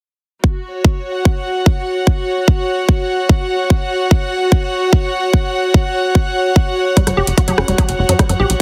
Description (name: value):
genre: psychedelic trance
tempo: 147 BPM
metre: 4/4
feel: straight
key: unclear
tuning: A4 = 440 Hz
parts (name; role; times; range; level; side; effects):
- electronic kick drum; drums; 0.4-8.3 s; none; -15 LUFS; equal; none
- rich chamber string section; texture; 0.4-8.6 s; F#4 to F#5; -20 LUFS; equal; sidechain pumping
- woody wave-folded pluck; riff; 7.0-8.5 s; F#3 to G4; -22 LUFS; equal; chorus, sidechain pumping, tape echo
- big-room dance drum kit; drums; 7.0-8.6 s; hi-hat, rim click; -22 LUFS; equal; none
- tight sequencer bass; bass; 7.1-8.6 s; F#1 to F#2; -20 LUFS; equal; none
room: light reverb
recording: heavily compressed radio sound, multiband compression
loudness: -15 LUFS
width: mono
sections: 0.4-8.6 A section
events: none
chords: 0.4 F#5